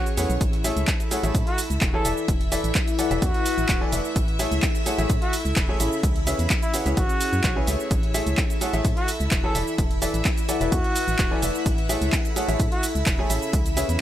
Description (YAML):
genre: piano house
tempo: 128 BPM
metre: 4/4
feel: straight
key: A major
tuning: A4 = 437 Hz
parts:
  - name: mellow trumpet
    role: melody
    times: 0.0-12.9 s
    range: E4 to A4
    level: -30 LUFS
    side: right 1 dB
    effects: tape echo
  - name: string machine, violins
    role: sustained chords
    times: 0.0-14.0 s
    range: C#4 to E5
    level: -31 LUFS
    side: left 2 dB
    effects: ensemble chorus, sidechain pumping
  - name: airy breathy pad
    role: texture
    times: 0.0-14.0 s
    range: C#4 to B5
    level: -33 LUFS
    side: left 2 dB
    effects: chorus, sidechain pumping
  - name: punchy analog drum machine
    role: drums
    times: 0.1-14.0 s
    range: handclaps, hi-hat, shaker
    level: -28 LUFS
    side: right 2 dB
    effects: overdrive
  - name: clear baby grand piano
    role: riff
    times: 0.2-14.0 s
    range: C#3 to G#5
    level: -28 LUFS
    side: equal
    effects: sidechain pumping, tape echo
  - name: organ-like FM bass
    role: bass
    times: 0.2-14.0 s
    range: D1 to A2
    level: -27 LUFS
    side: equal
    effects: sidechain pumping
  - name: electronic kick drum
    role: drums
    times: 0.4-13.6 s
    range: none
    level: -24 LUFS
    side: equal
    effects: overdrive
room: little or no reverb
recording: none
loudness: -20 LUFS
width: side -12 dB against mid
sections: 0.0-14.0 A section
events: none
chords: 0.4 Amaj7; 2.0 E7sus4; 4.2 Amaj7; 6.0 C#m7; 7.9 Amaj7; 9.5 E7sus4; 11.7 Amaj7